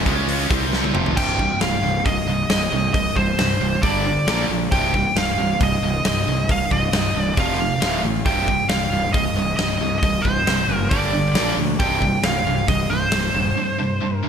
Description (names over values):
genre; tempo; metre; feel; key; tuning
hard rock; 136 BPM; 4/4; straight; C minor; A4 = 440 Hz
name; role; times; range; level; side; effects
overdriven electric guitar; riff; 0.0-14.3 s; C2 to Db4; -25 LUFS; right 9 dB; none
scooped high-gain guitar; riff; 0.0-14.3 s; C2 to Db4; -26 LUFS; left 9 dB; distortion
fuzz fingered electric bass; bass; 0.0-13.5 s; C1 to D2; -26 LUFS; equal; overdrive
huge arena drum kit; drums; 0.1-13.2 s; crash cymbal, hi-hat, kick drum, snare drum, toms; -23 LUFS; left 1 dB; gated reverb
nasal lead guitar with a parked wah; melody; 1.2-14.3 s; C5 to G5; -22 LUFS; right 1 dB; overdrive, digital delay
room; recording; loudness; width
light reverb, small room ambience; bright 1980s-style digital production; -17 LUFS; side -7 dB against mid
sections
0.0-1.2 A section; 1.2-14.3 B section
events
drum fill 0.7-1.2; break 13.6-14.3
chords
0.1 Db5; 0.5 C5; 0.9 F5; 1.2 Cm; 3.8 G5; 4.3 Bb5; 4.7 Cm; 7.4 F5; 7.8 D5; 8.3 Cm; 10.9 G5; 11.4 Bb5; 11.8 C5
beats
0.28 0.73 | 1.17 1.61 2.06 2.50 | 2.94 3.39 3.83 4.27 | 4.72 5.16 5.60 6.05 | 6.49 6.93 7.37 7.82 | 8.26 8.70 9.14 9.59 | 10.03 10.47 10.91 11.36 | 11.80 12.24 12.68 13.12 | 13.57 14.01